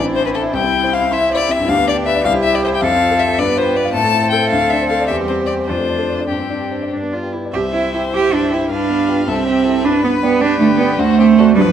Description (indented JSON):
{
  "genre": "quick classical-period movement for piano quartet",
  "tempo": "104 BPM (dotted quarters)",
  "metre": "6/8",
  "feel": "rubato",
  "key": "C major",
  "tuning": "A4 = 441 Hz",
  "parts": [
    { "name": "rich violin", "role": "melody", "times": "0.0-11.7 s", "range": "F#4 to A5", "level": "-19 LUFS", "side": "left 6 dB", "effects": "none" },
    { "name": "rich cello", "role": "second line", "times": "0.0-11.7 s", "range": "F3 to B4", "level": "-17 LUFS", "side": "right 6 dB", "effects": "none" },
    { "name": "clear grand piano", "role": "accompaniment", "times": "0.0-11.7 s", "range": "A1 to C6", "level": "-19 LUFS", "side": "left 2 dB", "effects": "none" },
    { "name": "clear viola", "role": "accompaniment", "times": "0.0-11.7 s", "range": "B3 to F5", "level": "-25 LUFS", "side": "right 1 dB", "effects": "none" }
  ],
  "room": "moderate concert hall reverb, RT60 1.9 s",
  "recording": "close, detailed microphones",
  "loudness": "-13 LUFS",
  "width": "side -9 dB against mid",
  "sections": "0.0-7.5 A section; 7.5-11.7 B section",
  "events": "none",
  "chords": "0.0 Am; 0.5 C; 1.7 G/D; 2.3 C; 2.8 F; 3.4 G7; 3.9 Am; 4.5 D5; 5.1 C/E; 5.7 Dm7/F; 6.3 Gsus4; 6.9 G; 7.5 C; 8.7 G7; 9.3 C; 9.8 G; 11.0 D7"
}